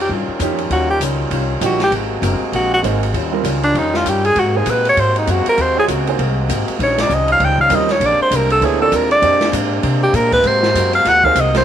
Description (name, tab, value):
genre	jazz, big band swing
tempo	197 BPM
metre	4/4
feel	swing 62% on 8ths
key	unclear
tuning	A4 = 440 Hz
part	breathy alto saxophone	melody	0.0-11.6 s	D4 to G5	-15 LUFS	equal	none
part	bright trombone section	sustained chords	0.0-11.6 s	C3 to Gb4	-23 LUFS	left 1 dB	none
part	upright bass	bass	0.0-11.6 s	Gb1 to C3	-20 LUFS	equal	none
part	archtop guitar, miked and amplified	accompaniment	0.1-11.6 s	Bb2 to Bb4	-27 LUFS	left 13 dB	none
part	open jazz drum kit	drums	0.1-11.6 s	hi-hat, kick drum, ride cymbal, snare drum	-23 LUFS	right 3 dB	none
part	clear concert grand piano	accompaniment	0.4-11.6 s	F3 to Eb5	-22 LUFS	right 12 dB	none
room	light reverb, small room ambience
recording	1960s-style stereo with parts hard left and right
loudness	-13 LUFS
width	side -10 dB against mid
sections	0.0-11.6 A section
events	alto saxophone solo 0.0-11.6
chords	0.0 Eb9; 1.9 Ab9; 3.1 Eb9; 4.4 Ab9; 6.8 Eb9; 8.0 Bb9; 10.4 Ab9